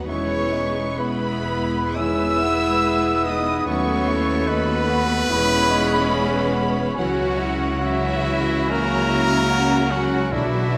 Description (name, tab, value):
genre	classical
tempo	58-76 BPM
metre	4/4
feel	rubato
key	unclear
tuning	A4 = 440 Hz
part	warm symphonic violin section	melody	0.0-10.8 s	E5 to E6	-32 LUFS	equal	none
part	rich symphonic violin section	second line	0.0-10.8 s	D4 to B4	-34 LUFS	equal	none
part	rich symphonic viola section	accompaniment	0.0-10.8 s	F#3 to D4	-30 LUFS	equal	none
part	clear symphonic cello section	bass	0.0-10.8 s	D#2 to C#3	-32 LUFS	equal	none
part	warm symphonic double bass section	bass	0.0-10.8 s	E1 to D#2	-31 LUFS	equal	none
part	bright clarinet	second line	0.1-10.8 s	F#4 to A4	-34 LUFS	equal	none
part	hollow flute section	second line	0.1-10.8 s	E5 to E6	-32 LUFS	equal	none
part	mellow cor anglais	second line	0.1-10.8 s	B4 to C#5	-36 LUFS	equal	none
part	mellow bassoon	accompaniment	0.1-10.8 s	B3 to F#4	-31 LUFS	equal	none
part	mellow French horn section	sustained chords	0.1-10.8 s	E3 to E4	-28 LUFS	equal	none
part	warm trombone section	sustained chords	0.1-10.7 s	D3 to A3	-36 LUFS	equal	none
part	bright trumpet	stabs	0.1-10.8 s	E4 to E5	-28 LUFS	equal	none
part	timpani	percussion	10.3-10.8 s	B2	-33 LUFS	equal	none
room	wet concert hall reverb, RT60 2.1 s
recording	none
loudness	-21 LUFS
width	mono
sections	0.0-10.8 A section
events	none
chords	0.1 Emaj7; 3.7 B7/D#; 5.3 E6; 7.0 F#7/C#